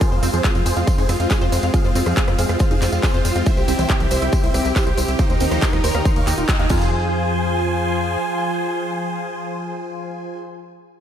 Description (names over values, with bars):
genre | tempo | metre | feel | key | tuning
uplifting trance | 139 BPM | 4/4 | straight | F minor | A4 = 440 Hz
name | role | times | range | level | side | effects
big supersaw lead | melody | 0.0-10.4 s | Eb4 to Ab5 | -26 LUFS | right 1 dB | phaser, sidechain pumping, ping-pong delay
lush unison pad | sustained chords | 0.0-10.4 s | C3 to C5 | -24 LUFS | equal | chorus, sidechain pumping
tight sequenced synth | arpeggios | 0.0-7.1 s | E3 to F5 | -27 LUFS | right 2 dB | chorus, sidechain pumping, ping-pong delay
big-room dance drum kit | drums | 0.0-6.8 s | crash cymbal, handclaps, hi-hat, rim click | -27 LUFS | equal | overdrive
electronic kick drum | drums | 0.0-6.8 s | none | -19 LUFS | equal | overdrive
tambourine | percussion | 0.0-6.9 s | none | -33 LUFS | left 1 dB | none
tight sequencer bass | bass | 0.1-8.2 s | Eb1 to F2 | -22 LUFS | equal | sidechain pumping
room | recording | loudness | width
moderate lush hall reverb, RT60 1.8 s, digital ambience | dreamy mix soaked in reverb | -17 LUFS | side -9 dB against mid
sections
0.0-6.9 A section; 6.9-10.4 B section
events
drop 0.0-6.9; band accent 6.5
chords
0.0 Fm; 3.5 C; 5.2 Eb; 6.7 Fm